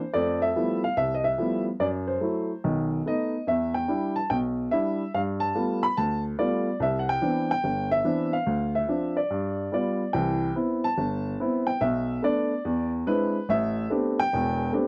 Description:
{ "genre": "solo jazz", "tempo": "144 BPM", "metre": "4/4", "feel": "swing 66% on 8ths", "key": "C major", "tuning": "A4 = 441 Hz", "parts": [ { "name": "warm upright piano", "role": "solo", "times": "0.0-14.9 s", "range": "E1 to B5", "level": "-26 LUFS", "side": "equal", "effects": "none" } ], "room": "little or no reverb", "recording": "dry, close 1970s-style studio recording", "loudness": "-26 LUFS", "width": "mono", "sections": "0.0-10.1 A section; 10.1-14.9 B section", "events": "none", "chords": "0.1 Fmaj9#11; 1.8 F#m7b5; 2.6 B7; 3.5 Em7; 5.1 G9; 6.8 Cmaj9; 8.5 Dm7; 9.3 G7; 10.1 Cmaj7; 11.8 Bmadd11; 12.7 E7b13; 13.5 Am11" }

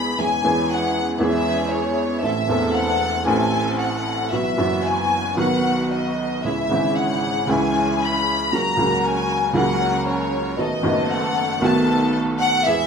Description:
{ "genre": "tango", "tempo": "115 BPM", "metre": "4/4", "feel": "rubato", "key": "unclear", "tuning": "A4 = 442 Hz", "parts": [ { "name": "warm studio violin section", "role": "second line", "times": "0.0-12.9 s", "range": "C#5 to B5", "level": "-22 LUFS", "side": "left 3 dB", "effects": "none" }, { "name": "clear upright piano", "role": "accompaniment", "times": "0.0-12.9 s", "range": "E1 to A4", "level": "-21 LUFS", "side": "right 2 dB", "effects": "none" }, { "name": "dark studio string section", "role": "stabs", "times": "0.0-12.9 s", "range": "E3 to A#4", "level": "-28 LUFS", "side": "right 1 dB", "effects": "none" } ], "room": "moderate large studio reverb, RT60 1.3 s", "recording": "minimal, uncompressed stereo recording", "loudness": "-18 LUFS", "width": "side -6 dB against mid", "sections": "0.0-12.9 A section", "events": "violin section solo 0.0-12.9", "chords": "0.2 C#m/E; 2.2 Am; 4.3 Bsus4; 5.4 B; 6.4 C#m; 8.5 F#/C#; 10.6 B7" }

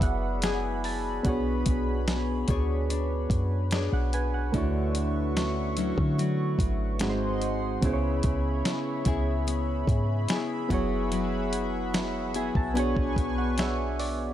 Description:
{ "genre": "contemporary R&B", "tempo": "73 BPM", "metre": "4/4", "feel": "straight", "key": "B dorian", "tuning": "A4 = 439 Hz", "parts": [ { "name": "soft electric-piano-like synth keys", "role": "accompaniment", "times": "0.0-14.3 s", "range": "G#3 to A5", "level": "-31 LUFS", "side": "right 3 dB", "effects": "chorus" }, { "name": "chorused pulse-width pad", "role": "sustained chords", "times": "0.0-14.3 s", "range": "D4 to C#6", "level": "-35 LUFS", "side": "left 1 dB", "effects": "none" }, { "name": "nylon-string guitar", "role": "arpeggios", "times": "0.0-14.3 s", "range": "G#2 to C#5", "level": "-34 LUFS", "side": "left 7 dB", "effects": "tape echo" }, { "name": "clean 808-style bass", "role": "bass", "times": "0.0-14.3 s", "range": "F#1 to D3", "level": "-30 LUFS", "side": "equal", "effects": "none" }, { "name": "dusty soul sampler-style drum kit", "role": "drums", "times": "0.0-14.2 s", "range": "hi-hat, kick drum, snare drum", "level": "-30 LUFS", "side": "equal", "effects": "none" } ], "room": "little or no reverb", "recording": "none", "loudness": "-25 LUFS", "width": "side -11 dB against mid", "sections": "0.0-14.3 A section", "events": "synth keys fill 0.0-1.2, 11.9-14.3", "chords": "0.0 F#9sus4; 1.2 Bm69; 4.5 Dmaj9; 7.0 G#7; 7.8 C#m7; 10.7 F#9sus4; 12.8 Bm69" }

